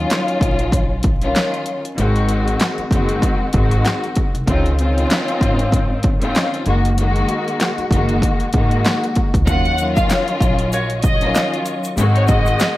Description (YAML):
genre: hip hop, boom-bap hip-hop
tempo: 96 BPM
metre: 4/4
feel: swing 58% on 16ths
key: Eb dorian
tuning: A4 = 440 Hz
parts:
  - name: warm studio string section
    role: accompaniment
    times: 0.0-12.8 s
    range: Eb3 to Gb4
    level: -20 LUFS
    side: left 2 dB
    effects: high-pass filter, low-pass filter
  - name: upright bass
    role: bass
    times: 0.0-12.5 s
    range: Gb1 to Eb2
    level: -19 LUFS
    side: equal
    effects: none
  - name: techno drum kit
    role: drums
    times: 0.1-12.8 s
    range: handclaps, hi-hat, kick drum, snare drum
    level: -18 LUFS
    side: equal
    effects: none
  - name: warm studio violin section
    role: melody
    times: 9.5-12.8 s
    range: Db5 to Gb5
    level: -22 LUFS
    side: equal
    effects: high-pass filter, low-pass filter, ping-pong delay
  - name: bright tonewheel organ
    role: sustained chords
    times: 9.5-12.8 s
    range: Gb3 to Db6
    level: -30 LUFS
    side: equal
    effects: chorus vibrato, fast rotary speaker, high-pass filter, low-pass filter
  - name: egg shaker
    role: percussion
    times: 9.5-12.8 s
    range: none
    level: -37 LUFS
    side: right 5 dB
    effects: none
  - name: clear saxophone section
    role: stabs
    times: 10.7-10.9 s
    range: Gb4 to Db5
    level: -28 LUFS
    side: equal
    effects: high-pass filter, low-pass filter, ping-pong delay
room: light reverb, studio reverb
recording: vinyl crackle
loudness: -15 LUFS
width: side -16 dB against mid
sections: 0.0-9.5 A section; 9.5-12.8 B section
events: none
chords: 0.0 Ebm9; 2.0 Ab7; 4.5 Dbmaj9; 6.7 Gb69; 9.5 Ebm9; 12.0 Ab7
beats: 0.10 0.72 1.35 | 1.97 2.60 3.22 3.85 | 4.47 5.10 5.72 6.35 | 6.97 7.60 8.22 8.85 | 9.47 10.10 10.72 11.35 | 11.97 12.60